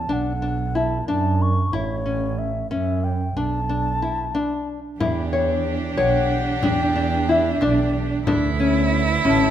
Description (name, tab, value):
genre	contemporary instrumental, chamber music in an uneven meter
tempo	184 BPM (eighths)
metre	5/8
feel	straight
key	unclear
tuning	A4 = 439 Hz
part	mellow baroque flute	melody	0.0-9.5 s	C#5 to C#6	-27 LUFS	left 2 dB	none
part	warm double bass	bass	0.0-9.5 s	A1 to F#2	-24 LUFS	right 4 dB	none
part	nylon-string guitar	arpeggios	0.1-9.5 s	C#4 to C#5	-23 LUFS	left 3 dB	none
part	clear cello	second line	5.0-9.5 s	D4 to E4	-25 LUFS	right 5 dB	none
part	clear studio string section	sustained chords	5.0-9.5 s	D3 to G4	-30 LUFS	right 1 dB	none
part	frame drum	percussion	5.0-9.5 s	none	-28 LUFS	left 3 dB	none
room	light reverb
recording	close, detailed microphones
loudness	-19 LUFS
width	side -10 dB against mid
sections	0.0-5.0 A section; 5.0-9.5 B section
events	break 4.3-5.0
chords	0.1 Bm; 1.7 A; 3.4 Bm7; 5.0 Em9; 8.3 Dsus2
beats	| 0.11 0.43 0.76 1.09 1.41 | 1.74 2.06 2.39 2.72 3.04 | 3.37 3.70 4.02 4.35 4.68 | 5.00 5.33 5.66 5.98 6.31 | 6.64 6.96 7.29 7.62 7.94 | 8.27 8.60 8.92 9.25